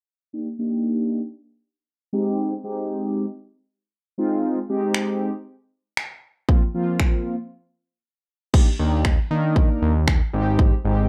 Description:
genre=dance-pop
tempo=117 BPM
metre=4/4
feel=straight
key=Eb major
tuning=A4 = 439 Hz
part: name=mellow synth brass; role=accompaniment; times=0.3-11.1 s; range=F3 to Bb4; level=-26 LUFS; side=equal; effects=chorus, sidechain pumping, low-pass filter
part: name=house drum kit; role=drums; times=4.9-10.7 s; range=crash cymbal, finger snaps, kick drum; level=-21 LUFS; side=equal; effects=none
part: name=fat analog bass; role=bass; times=8.8-11.1 s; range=Ab1 to Eb3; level=-23 LUFS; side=equal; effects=sidechain pumping
room=light reverb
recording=dark, warm production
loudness=-23 LUFS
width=mono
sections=0.3-8.5 A section; 8.5-11.1 B section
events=filter sweep on analog polysynth 0.3-8.5; break 7.5-8.5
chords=0.3 Ebmaj7; 2.1 Abmaj7; 4.2 Fm7/Ab; 6.5 Bbsus2; 8.5 Ebmaj7; 10.3 Abmaj7

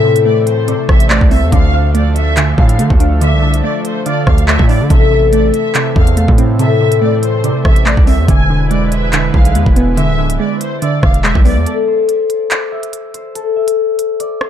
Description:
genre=hip hop, drill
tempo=142 BPM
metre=4/4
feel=half-time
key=A harmonic minor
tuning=A4 = 440 Hz
part: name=concert harp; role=melody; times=0.0-14.5 s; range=A4 to A5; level=-18 LUFS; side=left 6 dB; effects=low-pass filter, ping-pong delay
part: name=warm studio violin section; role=second line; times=0.0-11.7 s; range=C5 to G#5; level=-21 LUFS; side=right 1 dB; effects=ping-pong delay
part: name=glassy wavetable pluck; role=accompaniment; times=0.0-11.7 s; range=C3 to D4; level=-17 LUFS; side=right 2 dB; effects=chorus, low-pass filter
part: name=warm analog pad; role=sustained chords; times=0.0-11.6 s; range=D3 to B4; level=-24 LUFS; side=right 1 dB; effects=chorus
part: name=distorted 808-style bass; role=bass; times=0.0-11.7 s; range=D1 to D3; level=-14 LUFS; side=equal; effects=distortion
part: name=drill drum kit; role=drums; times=0.2-14.5 s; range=handclaps, hi-hat, kick drum, rim click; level=-12 LUFS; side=equal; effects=none
room=digital ambience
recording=dark, warm production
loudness=-10 LUFS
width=side -10 dB against mid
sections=0.0-11.7 A section; 11.7-14.5 B section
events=break 11.7-14.5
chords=0.0 Am; 1.5 Dm; 4.9 Am; 8.3 E7; 11.7 N.C.

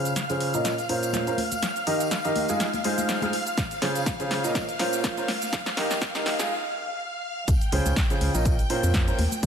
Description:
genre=piano house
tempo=123 BPM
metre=4/4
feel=swing 55% on 16ths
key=unclear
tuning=A4 = 439 Hz
part: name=string machine, violins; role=sustained chords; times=0.0-9.5 s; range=F5 to G6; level=-31 LUFS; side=equal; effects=ensemble chorus, sidechain pumping
part: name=warm grand piano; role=riff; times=0.0-9.2 s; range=Bb2 to F5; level=-27 LUFS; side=right 1 dB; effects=sidechain pumping, low-pass filter, digital delay
part: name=punchy analog drum machine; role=drums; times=0.1-9.5 s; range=hi-hat, shaker, snare drum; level=-29 LUFS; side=equal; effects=none
part: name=tambourine and congas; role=percussion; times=0.1-9.5 s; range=none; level=-36 LUFS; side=left 4 dB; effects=none
part: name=electronic kick drum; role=drums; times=3.6-9.5 s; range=none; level=-25 LUFS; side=equal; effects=none
part: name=organ-like FM bass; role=bass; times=7.5-9.5 s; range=Bb1 to F2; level=-25 LUFS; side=equal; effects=sidechain pumping
room=light reverb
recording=high-pass filter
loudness=-23 LUFS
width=side -8 dB against mid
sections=0.0-7.5 A section; 7.5-9.5 B section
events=build-up 0.0-7.5; drum fill 0.0-6.5; filter sweep on grand piano 0.0-7.5; break 6.5-7.5; drop 7.5-9.5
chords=0.0 Dbmaj7; 0.7 Bbmadd9; 1.4 Eb; 2.6 Ab6; 3.6 Dbmaj7; 4.6 Bbmadd9; 5.3 Eb; 6.5 N.C.; 7.5 Dbmaj7; 8.5 Bbmadd9

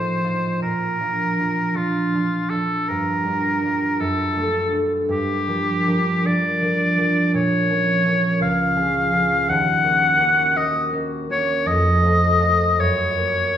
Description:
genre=classical, romantic duo for oboe and harp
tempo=54 BPM (dotted quarters)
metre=6/8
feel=uneven beats, rubato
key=unclear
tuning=A4 = 440 Hz
part: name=warm oboe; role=melody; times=0.0-13.6 s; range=F4 to Gb5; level=-20 LUFS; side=left 1 dB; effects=none
part: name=concert harp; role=accompaniment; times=0.0-13.6 s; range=Db2 to Bb4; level=-21 LUFS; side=right 1 dB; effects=none
room=wet recital hall reverb, RT60 1.4 s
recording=recorded in a church or concert hall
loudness=-17 LUFS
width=side -9 dB against mid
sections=0.0-13.6 A section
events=none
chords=0.0 F7/A; 0.6 Bb; 2.9 Gm7; 4.0 D/F#; 5.1 Gm7; 7.3 Bbm; 8.4 Db; 9.5 Ebm7; 11.7 F; 12.8 Gb

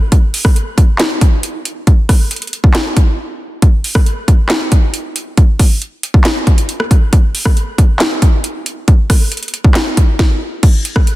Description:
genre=hip hop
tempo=137 BPM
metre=4/4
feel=half-time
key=none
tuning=none
part: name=trap drum kit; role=drums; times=0.1-11.2 s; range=crash cymbal, handclaps, hi-hat, kick drum, rim click, snare drum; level=-10 LUFS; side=equal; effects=overdrive
room=light reverb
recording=dense, heavily limited modern master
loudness=-10 LUFS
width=side -17 dB against mid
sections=0.0-10.6 A section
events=break 3.2-3.6; stop 10.2-10.6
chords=none

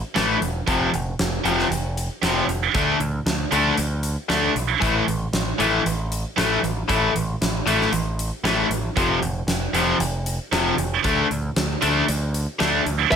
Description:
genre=hard rock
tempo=116 BPM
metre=4/4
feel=straight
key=unclear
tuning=A4 = 438 Hz
part: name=scooped high-gain guitar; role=riff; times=0.1-13.2 s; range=E2 to D4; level=-23 LUFS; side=right 11 dB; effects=distortion
part: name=overdriven semi-hollow guitar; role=riff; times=0.2-13.2 s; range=E2 to D4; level=-23 LUFS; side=left 9 dB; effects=none
part: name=growling picked electric bass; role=bass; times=0.2-13.2 s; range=E1 to D2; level=-26 LUFS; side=right 1 dB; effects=overdrive
part: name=huge arena drum kit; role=drums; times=0.2-13.2 s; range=crash cymbal, hi-hat, kick drum, snare drum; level=-26 LUFS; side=equal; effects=none
part: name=high-gain lead guitar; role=melody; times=13.1-13.2 s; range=E5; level=-17 LUFS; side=right 2 dB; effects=distortion
part: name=distorted electric guitar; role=riff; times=13.1-13.2 s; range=E2 to E3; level=-22 LUFS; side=equal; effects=overdrive
room=light reverb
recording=none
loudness=-19 LUFS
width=side -7 dB against mid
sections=0.0-13.1 A section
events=none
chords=0.0 A5; 0.7 F5; 2.7 D5; 4.8 A5; 9.0 F5; 11.0 D5

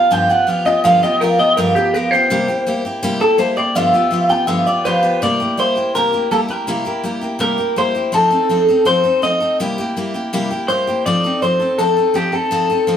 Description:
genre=rock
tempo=164 BPM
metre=4/4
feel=straight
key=C mixolydian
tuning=A4 = 440 Hz
part: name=electric guitar through a small old amp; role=melody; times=0.0-13.0 s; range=G4 to G5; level=-15 LUFS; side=left 1 dB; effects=phaser
part: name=picked steel-string acoustic guitar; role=accompaniment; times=0.0-13.0 s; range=G2 to A4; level=-18 LUFS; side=equal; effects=none
room=moderate studio reverb, RT60 1.0 s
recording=band playing live in one room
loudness=-14 LUFS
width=side -9 dB against mid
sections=0.0-5.2 A section; 5.2-13.0 B section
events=clean electric guitar solo 0.0-5.2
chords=0.0 G7; 2.3 C7; 3.8 G7; 5.2 C7; 8.1 F7; 9.6 C7; 11.1 F7

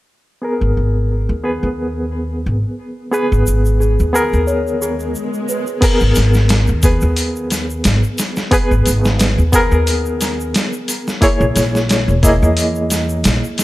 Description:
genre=trip hop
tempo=89 BPM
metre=4/4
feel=swing 54% on 16ths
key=G# minor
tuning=A4 = 443 Hz
part: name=barky reed electric piano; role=accompaniment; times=0.4-13.6 s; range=A#3 to D#5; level=-18 LUFS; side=equal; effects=overdrive, fast tremolo, low-pass filter, tape echo
part: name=upright bass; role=bass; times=0.6-13.4 s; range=E1 to E2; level=-16 LUFS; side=equal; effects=none
part: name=celesta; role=arpeggios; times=3.1-5.8 s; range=G#4 to C#5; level=-23 LUFS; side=left 1 dB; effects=vintage 12-bit sampler grit, tape echo
part: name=egg shaker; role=percussion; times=3.1-13.6 s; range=none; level=-26 LUFS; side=equal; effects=none
part: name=swell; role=sound effects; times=4.8-5.8 s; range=none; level=-28 LUFS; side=left 1 dB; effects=none
part: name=dusty soul sampler-style drum kit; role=drums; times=5.8-13.6 s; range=crash cymbal, hi-hat, kick drum, snare drum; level=-17 LUFS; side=equal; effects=overdrive
room=light reverb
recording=none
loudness=-13 LUFS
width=side -17 dB against mid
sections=0.4-5.8 A section; 5.8-13.6 B section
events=swell 4.8-5.8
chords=0.4 G#madd9; 11.2 A#m7b5

